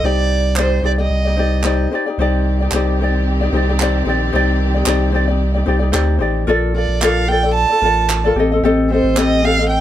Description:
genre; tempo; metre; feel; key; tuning
acoustic pop; 112 BPM; 4/4; swing 55% on 16ths; unclear; A4 = 440 Hz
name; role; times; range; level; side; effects
dark violin; melody; 0.0-1.9, 6.8-9.8 s; C5 to A5; -19 LUFS; right 4 dB; none
ukulele; accompaniment; 0.0-9.8 s; C4 to Eb5; -18 LUFS; left 3 dB; none
warm sub bass; bass; 0.0-9.8 s; A1 to D2; -17 LUFS; equal; none
group handclap; percussion; 0.6-9.3 s; none; -22 LUFS; right 4 dB; none
warm studio string section; sustained chords; 2.2-6.4 s; Eb3 to D5; -25 LUFS; left 1 dB; none
room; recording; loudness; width
moderate small room reverb, RT60 0.6 s; none; -14 LUFS; side -12 dB against mid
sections
0.0-2.2 A section; 2.2-6.5 B section; 6.5-9.8 C section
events
none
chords
0.0 Cmadd9; 6.5 Bbmaj7; 8.4 Am7b5

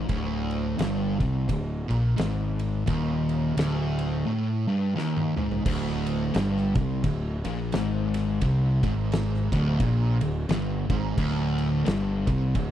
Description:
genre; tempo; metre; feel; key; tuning
stoner and doom metal; 87 BPM; 4/4; swing 59% on 8ths; unclear; A4 = 440 Hz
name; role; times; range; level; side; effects
fuzz guitar; riff; 0.0-12.7 s; D2 to C3; -25 LUFS; equal; distortion
fuzz fingered electric bass; bass; 0.0-12.7 s; D1 to C2; -30 LUFS; equal; overdrive
oversized low-tuned drum kit; drums; 0.1-12.7 s; crash cymbal, kick drum, ride cymbal, snare drum, toms; -30 LUFS; equal; none
room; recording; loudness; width
little or no reverb; dry, close 1970s-style studio recording; -23 LUFS; side -11 dB against mid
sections
0.0-5.7 A section; 5.7-12.7 B section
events
drum fill 5.0-5.7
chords
0.0 D5

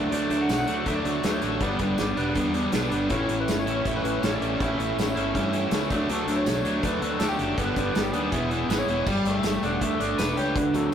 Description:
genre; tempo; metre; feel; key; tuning
indie rock; 161 BPM; 4/4; straight; unclear; A4 = 440 Hz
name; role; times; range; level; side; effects
overdriven semi-hollow guitar; riff; 0.0-10.9 s; G2 to B4; -25 LUFS; equal; none
modern bright fingered electric bass; bass; 0.0-10.9 s; E1 to G2; -32 LUFS; equal; none
lead with added fifth; melody; 0.1-10.9 s; G4 to F#5; -32 LUFS; left 1 dB; chorus
loose indie drum kit; drums; 0.1-10.8 s; crash cymbal, hi-hat, kick drum, snare drum, tambourine; -30 LUFS; equal; none
room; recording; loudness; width
moderate studio reverb, RT60 0.5 s; rough rehearsal-room recording, tube saturation; -23 LUFS; side -8 dB against mid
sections
0.0-9.1 A section; 9.1-10.9 B section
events
none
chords
0.0 D; 1.6 G; 3.1 A; 5.9 D; 7.6 G; 8.3 E; 9.1 Gadd9

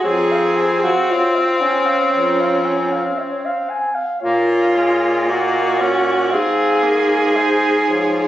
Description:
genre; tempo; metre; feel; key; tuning
classical, lyrical piece for single-reed quartet; 58 BPM; 4/4; rubato; Db major; A4 = 440 Hz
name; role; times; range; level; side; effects
dark clarinet; melody; 0.0-8.3 s; C5 to Ab5; -24 LUFS; left 1 dB; none
clear tenor saxophone; accompaniment; 0.0-8.3 s; F3 to Db4; -20 LUFS; left 2 dB; none
warm baritone saxophone; bass; 0.0-8.3 s; F2 to Bb2; -21 LUFS; equal; none
mellow alto saxophone; second line; 0.1-8.3 s; Db4 to Ab4; -18 LUFS; right 2 dB; none
room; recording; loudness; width
moderate recital hall reverb, RT60 1.4 s; recorded on a phone in the room, studio reverb, nothing above 7.8 kHz; -14 LUFS; side -13 dB against mid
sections
0.0-8.3 A section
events
none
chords
0.1 Db/F; 4.2 Bbm; 6.3 Fm/Ab

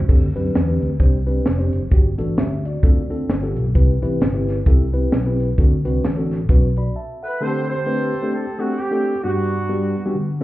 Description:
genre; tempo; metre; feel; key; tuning
uptempo gospel; 131 BPM; 4/4; swing 59% on 8ths; unclear; A4 = 440 Hz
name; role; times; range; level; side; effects
fingered electric bass; bass; 0.0-6.9 s; F1 to F#2; -20 LUFS; equal; none
tight funk drum kit; drums; 0.0-6.9 s; crash cymbal, hi-hat, kick drum, snare drum, toms; -18 LUFS; equal; none
mellow tine electric piano; accompaniment; 0.1-10.4 s; G2 to B5; -23 LUFS; left 1 dB; none
warm horn section; melody; 7.2-10.1 s; B3 to C5; -24 LUFS; right 3 dB; none
room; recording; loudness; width
light reverb, small room reverb; heard muffled through a wall, club reverb, EQ; -17 LUFS; side -16 dB against mid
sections
0.1-7.4 A section; 7.4-10.4 B section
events
tine electric piano fill 6.5-7.4; break 7.0-7.4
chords
0.1 D7sus4; 1.9 Gmaj7; 2.8 Dm7; 3.3 G9; 3.8 Cmaj7; 5.6 D7; 7.4 D7sus4; 9.2 Gmaj7

